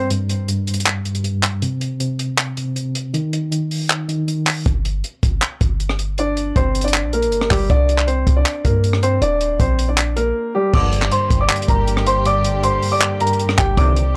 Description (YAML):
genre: hip hop, trap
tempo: 158 BPM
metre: 4/4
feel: half-time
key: G minor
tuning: A4 = 440 Hz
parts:
  - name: warm concert grand piano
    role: melody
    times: 0.0-0.1, 6.2-14.1 s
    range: G3 to D6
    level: -22 LUFS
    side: equal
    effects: none
  - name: soft electric-piano-like synth keys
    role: accompaniment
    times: 0.0-4.7, 10.7-14.2 s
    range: G2 to Eb3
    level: -24 LUFS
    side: equal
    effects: chorus, tremolo
  - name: compact cocktail drum kit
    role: drums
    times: 0.1-14.1 s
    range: crash cymbal, handclaps, hi-hat, kick drum, rim click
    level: -22 LUFS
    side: equal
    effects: none
  - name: clean 808-style bass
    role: bass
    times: 4.7-14.2 s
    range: Eb1 to G2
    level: -22 LUFS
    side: equal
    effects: none
  - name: dark studio string section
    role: sustained chords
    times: 10.7-14.2 s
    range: D3 to G4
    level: -30 LUFS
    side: equal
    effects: none
  - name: mellow brass ensemble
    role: stabs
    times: 10.7-11.0, 13.8-14.0 s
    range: G1 to D3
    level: -28 LUFS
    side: equal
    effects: none
room: little or no reverb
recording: dry, gritty hardware recording, cassette tape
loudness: -18 LUFS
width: mono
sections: 0.0-10.7 A section; 10.7-14.2 B section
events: break 0.0-6.2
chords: 0.0 N.C.; 4.7 Gm; 7.7 C5; 9.2 Eb; 10.7 Gm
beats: | 0.10 0.48 0.86 1.24 | 1.62 2.00 2.38 2.76 | 3.14 3.52 3.90 4.28 | 4.66 5.04 5.42 5.80 | 6.18 6.56 6.94 7.32 | 7.70 8.08 8.46 8.84 | 9.22 9.60 9.98 10.36 | 10.74 11.12 11.49 11.88 | 12.26 12.63 13.01 13.39 | 13.77 14.15